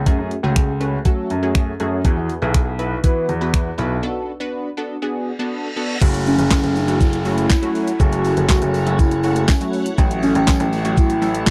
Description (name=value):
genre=dance-pop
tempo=121 BPM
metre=4/4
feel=straight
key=F# minor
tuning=A4 = 440 Hz
part: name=funky polysynth comp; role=accompaniment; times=0.1-11.5 s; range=F#3 to B4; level=-26 LUFS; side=equal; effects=chorus, sidechain pumping
part: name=clear grand piano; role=bass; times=0.1-11.4 s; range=F#1 to F#3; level=-24 LUFS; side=equal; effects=sidechain pumping
part: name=clean 12-bit digital drum machine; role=drums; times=0.1-11.5 s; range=crash cymbal, finger snaps, handclaps, hi-hat, kick drum, shaker, snare drum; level=-19 LUFS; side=equal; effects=none
part: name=reverse cymbal and downlifter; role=sound effects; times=5.3-10.0 s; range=none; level=-36 LUFS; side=equal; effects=none
part: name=soft string machine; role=sustained chords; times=7.8-11.5 s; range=E4 to F#5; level=-34 LUFS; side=equal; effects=phaser, ensemble chorus, sidechain pumping
part: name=tambourine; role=percussion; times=6.0-11.5 s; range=none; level=-44 LUFS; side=equal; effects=none
part: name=hollow clarinet-like synth lead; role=melody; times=6.3-11.5 s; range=C#4 to F#4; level=-23 LUFS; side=equal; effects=chorus, phaser, slapback echo
room=little or no reverb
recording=dry, close 1970s-style studio recording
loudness=-19 LUFS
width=mono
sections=0.0-6.0 A section; 6.0-11.5 B section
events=break 4.0-6.0; reverse cymbal 5.3-6.0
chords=0.1 F#madd9; 2.0 Eadd9; 4.0 Bm7; 6.0 F#m7; 10.0 A6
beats=| 0.07 0.56 1.06 1.55 | 2.05 2.54 3.04 3.54 | 4.03 4.53 5.02 5.52 | 6.01 6.51 7.01 7.50 | 8.00 8.49 8.99 9.49 | 9.98 10.48 10.97 11.47